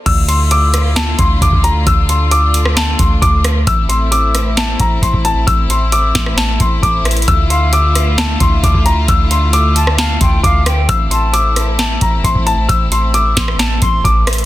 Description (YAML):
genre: hip hop, trap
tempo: 133 BPM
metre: 4/4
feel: half-time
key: D minor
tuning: A4 = 441 Hz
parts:
  - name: dark baby grand piano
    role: melody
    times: 0.1-14.2 s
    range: A5 to E6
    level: -16 LUFS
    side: left 2 dB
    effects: low-pass filter, digital delay
  - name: clear studio string section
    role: sustained chords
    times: 0.1-14.5 s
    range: D3 to F4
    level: -22 LUFS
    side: left 1 dB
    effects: none
  - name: clean 808-style bass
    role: bass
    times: 0.1-14.5 s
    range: A1 to D2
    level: -15 LUFS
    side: equal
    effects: none
  - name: booming analog drum machine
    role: drums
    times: 0.1-14.4 s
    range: crash cymbal, hi-hat, kick drum, rim click, snare drum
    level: -15 LUFS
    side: equal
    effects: none
  - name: silver concert flute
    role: second line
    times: 7.5-14.0 s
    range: F5 to C6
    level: -24 LUFS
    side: equal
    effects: digital delay
room: little or no reverb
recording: dense, heavily limited modern master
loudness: -10 LUFS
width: side -15 dB against mid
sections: 0.1-14.5 A section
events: none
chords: 0.1 Dmadd9; 3.7 Am; 7.3 Dmadd9; 10.9 Am